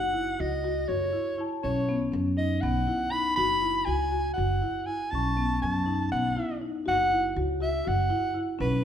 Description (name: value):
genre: contemporary instrumental, chamber music in an uneven meter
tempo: 242 BPM (eighths)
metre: 7/8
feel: straight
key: unclear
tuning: A4 = 440 Hz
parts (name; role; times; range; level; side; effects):
- breathy soprano saxophone; melody; 0.0-8.8 s; B4 to B5; -28 LUFS; equal; none
- marimba with soft mallets; arpeggios; 0.0-8.8 s; B3 to F#4; -30 LUFS; left 2 dB; none
- upright bass; bass; 0.0-8.8 s; F#1 to F#2; -31 LUFS; right 2 dB; none
- large celesta; texture; 0.0-1.9, 5.1-5.9 s; F#5 to C#6; -39 LUFS; left 5 dB; none
room: wet recital hall reverb, RT60 1.4 s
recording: recorded in a church or concert hall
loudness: -25 LUFS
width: side -9 dB against mid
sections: 0.0-8.8 A section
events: none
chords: 0.0 F#5; 1.6 B7; 3.4 F#sus4; 5.1 B7; 6.9 F#5